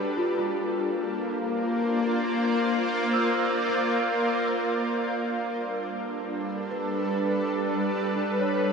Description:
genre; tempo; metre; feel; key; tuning
ambient; free time; none; none; unclear; A4 = 442 Hz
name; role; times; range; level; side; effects
shimmering ambient pad; sustained chords; 0.0-8.7 s; G3 to D5; -25 LUFS; equal; chorus, built-in reverb, shimmer reverb
celesta; arpeggios; 0.0-8.7 s; D4 to G6; -32 LUFS; equal; wide subtle chorus, ping-pong delay, shimmer reverb
room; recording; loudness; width
wet huge ambient reverb, RT60 7.9 s; dreamy mix soaked in reverb; -24 LUFS; side -5 dB against mid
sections
0.0-5.0 A section; 5.0-8.7 B section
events
none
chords
0.0 Bbadd9; 5.0 Gadd9

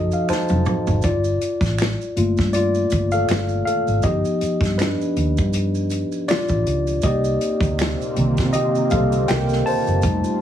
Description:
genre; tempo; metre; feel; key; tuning
R&B, neo-soul; 80 BPM; 4/4; swing 56% on 16ths; unclear; A4 = 437 Hz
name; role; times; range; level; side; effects
tine electric piano; accompaniment; 0.0-10.4 s; D3 to A5; -21 LUFS; left 1 dB; none
vintage muted fingered electric bass; bass; 0.0-10.2 s; F1 to C3; -22 LUFS; right 1 dB; none
maracas and finger snaps; percussion; 0.1-10.4 s; none; -37 LUFS; right 12 dB; none
warm soul drum kit; drums; 0.3-10.2 s; finger snaps, hi-hat, kick drum, snare drum, toms; -23 LUFS; equal; none
lush unison pad; sustained chords; 7.5-10.4 s; Bb2 to F4; -27 LUFS; right 4 dB; chorus, phaser
room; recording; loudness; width
light reverb; heavily compressed radio sound, small room ambience; -18 LUFS; side -10 dB against mid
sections
0.0-1.0 A section; 1.0-10.4 B section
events
tine electric piano fill 0.0-1.0; drum fill 0.3-1.0; tine electric piano solo 1.0-10.4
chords
0.0 F7b9; 1.0 Gm9; 4.0 G7b13; 7.0 Cm9

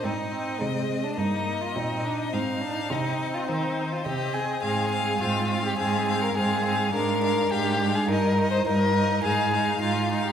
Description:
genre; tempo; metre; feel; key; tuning
quick classical-period movement for string quartet; 104 BPM; 4/4; rubato; unclear; A4 = 444 Hz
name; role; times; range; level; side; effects
clear violin; melody; 0.0-10.3 s; C5 to F5; -32 LUFS; left 5 dB; none
rich violin; second line; 0.0-10.3 s; C4 to C5; -27 LUFS; left 2 dB; none
warm viola; accompaniment; 0.0-10.3 s; Ab3 to Eb4; -32 LUFS; right 2 dB; none
rich cello; bass; 0.0-10.3 s; G2 to Eb3; -28 LUFS; right 3 dB; none
room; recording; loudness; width
wet recital hall reverb, RT60 1.7 s; recorded in a church or concert hall; -23 LUFS; side -8 dB against mid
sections
0.0-10.3 A section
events
none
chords
0.0 Ab; 1.2 Eb/G; 2.3 Ab; 4.6 Fm/Ab; 6.9 Bb7/Ab; 8.1 Eb/G; 9.2 Fm7/Ab

